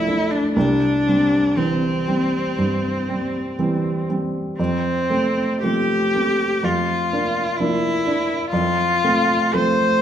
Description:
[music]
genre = classical, romantic duo for cello and grand piano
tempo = 56-65 BPM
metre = 4/4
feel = rubato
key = F major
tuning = A4 = 439 Hz
[part]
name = rich cello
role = melody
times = 0.0-10.0 s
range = C4 to C5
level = -20 LUFS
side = left 1 dB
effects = none
[part]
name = dark baby grand piano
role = accompaniment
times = 0.0-10.0 s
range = Bb1 to D4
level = -21 LUFS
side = right 2 dB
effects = none
[sound]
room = wet recital hall reverb, RT60 1.6 s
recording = minimal, uncompressed stereo recording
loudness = -18 LUFS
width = side -9 dB against mid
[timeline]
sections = 0.0-10.0 A section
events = none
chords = 0.0 Bbmaj7; 0.6 C; 4.6 F; 6.6 Bb/F; 8.5 F

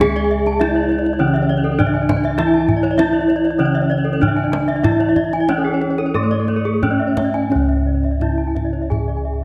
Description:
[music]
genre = Balinese gamelan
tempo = 86-102 BPM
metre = 4/4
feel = straight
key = C# pelog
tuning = A4 = 439 Hz
[part]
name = gamelan-type bronze metallophone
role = melody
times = 0.0-9.4 s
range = A3 to G#4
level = -21 LUFS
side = equal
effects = none
[part]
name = gamelan-type bronze metallophone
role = accompaniment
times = 0.0-7.5 s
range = C#3 to A3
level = -26 LUFS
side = equal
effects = none
[part]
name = gamelan-type bronze metallophone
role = arpeggios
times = 0.0-9.3 s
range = G#4 to A5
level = -28 LUFS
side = equal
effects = none
[part]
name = gamelan-type bossed gongs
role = bass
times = 0.0-9.4 s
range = C#2 to G#4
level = -24 LUFS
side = equal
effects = none
[part]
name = kendang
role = percussion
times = 0.0-9.2 s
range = none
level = -26 LUFS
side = equal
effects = none
[part]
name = gamelan-type bronze metallophone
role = arpeggios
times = 0.1-9.4 s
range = G#4 to A5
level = -29 LUFS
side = equal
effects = none
[sound]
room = moderate concert hall reverb, RT60 1.7 s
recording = none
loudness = -17 LUFS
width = mono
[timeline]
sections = 0.0-7.5 A section; 7.5-9.4 B section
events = none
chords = none

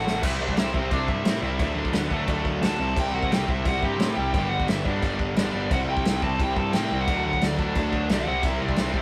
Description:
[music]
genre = punk rock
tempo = 175 BPM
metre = 4/4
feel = straight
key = unclear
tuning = A4 = 442 Hz
[part]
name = nasal lead guitar with a parked wah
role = melody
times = 0.0-9.0 s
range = A3 to A5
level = -32 LUFS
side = equal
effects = overdrive
[part]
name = distorted electric guitar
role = riff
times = 0.0-9.0 s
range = G2 to D4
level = -34 LUFS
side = equal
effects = distortion
[part]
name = raw garage guitar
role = riff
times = 0.0-9.0 s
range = G2 to A4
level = -34 LUFS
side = equal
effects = overdrive
[part]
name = sludgy distorted guitar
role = riff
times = 0.0-9.0 s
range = G2 to A4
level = -34 LUFS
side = equal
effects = overdrive
[part]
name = growling picked electric bass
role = bass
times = 0.0-9.0 s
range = G1 to A2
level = -33 LUFS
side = equal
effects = overdrive
[part]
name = loose indie drum kit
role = drums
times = 0.1-9.0 s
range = crash cymbal, kick drum, snare drum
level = -29 LUFS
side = equal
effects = none
[sound]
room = light reverb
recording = rough rehearsal-room recording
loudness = -25 LUFS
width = mono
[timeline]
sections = 0.2-9.0 A section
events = drum fill 0.0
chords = 0.2 C; 1.6 D; 2.8 C; 4.3 G; 5.7 C; 7.1 D; 8.3 C

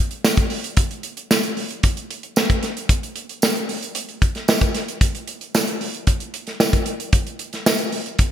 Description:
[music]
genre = pop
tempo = 113 BPM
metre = 4/4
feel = straight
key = none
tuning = none
[part]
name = modern studio drum kit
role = drums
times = 0.1-8.3 s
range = hi-hat, kick drum, snare drum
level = -19 LUFS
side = equal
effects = gated reverb
[part]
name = tambourine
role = percussion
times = 0.2-7.8 s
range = none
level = -28 LUFS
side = right 5 dB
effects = none
[sound]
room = moderate plate reverb, RT60 2.4 s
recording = bright 1980s-style digital production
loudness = -19 LUFS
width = side -10 dB against mid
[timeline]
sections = 0.0-8.3 A section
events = none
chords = none

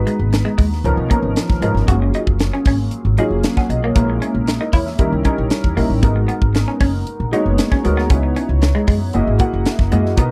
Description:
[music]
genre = polished 1980s jazz-funk pop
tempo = 116 BPM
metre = 4/4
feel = straight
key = unclear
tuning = A4 = 440 Hz
[part]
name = warm baby grand piano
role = accompaniment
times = 0.0-10.3 s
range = F3 to Gb5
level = -23 LUFS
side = equal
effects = analog chorus
[part]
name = upright bass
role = bass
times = 0.0-10.3 s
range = F1 to Gb2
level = -21 LUFS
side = equal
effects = none
[part]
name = clean electric guitar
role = riff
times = 0.1-10.3 s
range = Ab3 to Gb4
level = -25 LUFS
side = equal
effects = lush chorus
[part]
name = crisp fusion drum kit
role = drums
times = 0.1-10.3 s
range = hi-hat, kick drum, snare drum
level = -20 LUFS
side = equal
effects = none
[sound]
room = little or no reverb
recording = dry, close 1970s-style studio recording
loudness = -17 LUFS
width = mono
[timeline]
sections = 0.0-10.3 A section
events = none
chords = 0.0 Abm7; 0.8 Db13; 1.9 Gbmaj9; 4.0 Bbm7b5; 5.0 Eb7b9; 6.0 Abm9; 8.1 Dbm11; 9.1 Gb13

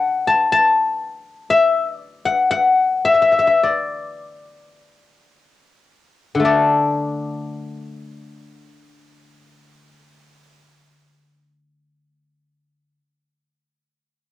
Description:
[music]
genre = chinese traditional, Chinese solo plucked strings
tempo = 36-61 BPM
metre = 2/4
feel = rubato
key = D gong mode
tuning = A4 = 440 Hz
[part]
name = guzheng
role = solo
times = 0.0-13.0 s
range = D3 to A5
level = -15 LUFS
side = left 3 dB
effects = cassette tape
[sound]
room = light reverb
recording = home recording on cassette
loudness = -15 LUFS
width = side -13 dB against mid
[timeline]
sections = 0.0-6.5 A section; 6.5-12.7 B section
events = slowing down 1.5-6.5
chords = none

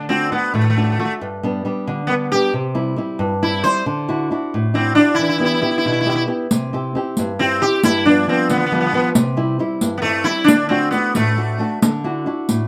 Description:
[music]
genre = italian folk, Italian serenade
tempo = 90 BPM (dotted quarters)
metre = 6/8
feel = straight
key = unclear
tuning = A4 = 440 Hz
[part]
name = nylon-string guitar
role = accompaniment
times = 0.0-12.7 s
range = G2 to G4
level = -22 LUFS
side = equal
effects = none
[part]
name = sitar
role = melody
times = 0.1-11.8 s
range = A3 to C5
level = -19 LUFS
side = equal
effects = slapback echo
[part]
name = riq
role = percussion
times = 6.5-12.7 s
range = none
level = -20 LUFS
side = equal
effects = none
[sound]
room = light reverb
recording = close, detailed microphones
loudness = -18 LUFS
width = mono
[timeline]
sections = 0.0-12.7 A section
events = none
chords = 0.0 D; 1.2 G; 2.5 C; 3.9 Dadd9; 5.2 Em; 6.5 C; 7.8 G7; 9.2 C; 10.5 D; 11.8 Dadd9

